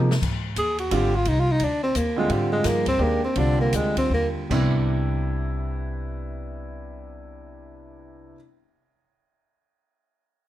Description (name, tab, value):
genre	modal jazz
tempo	147-174 BPM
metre	3/4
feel	swing 64% on 8ths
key	C major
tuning	A4 = 442 Hz
part	warm grand piano	accompaniment	0.0-8.4 s	C3 to Ab4	-28 LUFS	right 1 dB	none
part	upright bass	bass	0.0-8.3 s	Ab1 to C3	-25 LUFS	equal	none
part	open jazz drum kit	drums	0.0-4.6 s	china cymbal, crash cymbal, hi-hat, kick drum, ride cymbal, snare drum, toms	-32 LUFS	left 1 dB	none
part	mellow tenor saxophone	melody	0.6-4.3 s	G3 to Ab4	-24 LUFS	equal	none
room	light reverb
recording	none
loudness	-21 LUFS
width	side -13 dB against mid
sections	0.2-4.5 A section; 4.5-7.0 B section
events	drum fill 0.0; tenor saxophone solo 0.2-4.5; slowing down 2.3-4.5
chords	0.2 Abmaj9; 4.5 Cmaj9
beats	| 0.22 0.57 0.91 | 1.26 1.60 1.95 | 2.30 2.64 3.00 | 3.36 3.73 4.11 | 4.51 4.92 5.32 | 5.73 6.14 6.55